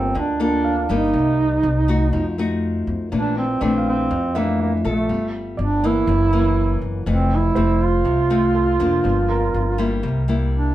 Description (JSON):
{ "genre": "bossa nova", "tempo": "122 BPM", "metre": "4/4", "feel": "straight", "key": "F major", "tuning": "A4 = 440 Hz", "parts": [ { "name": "mellow duduk", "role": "melody", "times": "0.0-10.7 s", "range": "A3 to F4", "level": "-20 LUFS", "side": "right 3 dB", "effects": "none" }, { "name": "nylon-string guitar", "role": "accompaniment", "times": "0.0-10.7 s", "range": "F2 to A4", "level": "-23 LUFS", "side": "left 3 dB", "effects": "none" }, { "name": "warm concert grand piano", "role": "accompaniment", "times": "0.0-10.2 s", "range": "A4 to F5", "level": "-30 LUFS", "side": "right 4 dB", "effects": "none" }, { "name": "upright bass", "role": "bass", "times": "0.0-10.7 s", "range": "F1 to F2", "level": "-22 LUFS", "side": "equal", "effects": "none" } ], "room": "moderate studio reverb, RT60 0.6 s", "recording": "none", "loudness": "-17 LUFS", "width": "side -14 dB against mid", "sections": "0.0-10.7 A section", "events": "none", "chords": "0.0 Gm9; 1.1 Cm7; 2.1 F7b9; 3.1 Bbmaj9#11; 5.1 Gm9; 6.1 Gb7; 7.1 Fmaj7; 9.0 Gm7; 10.0 C7", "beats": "0.15 0.65 | 1.14 1.63 2.13 2.62 | 3.12 3.61 4.10 4.60 | 5.09 5.58 6.08 6.57 | 7.07 7.56 8.05 8.55 | 9.04 9.54 10.03 10.52" }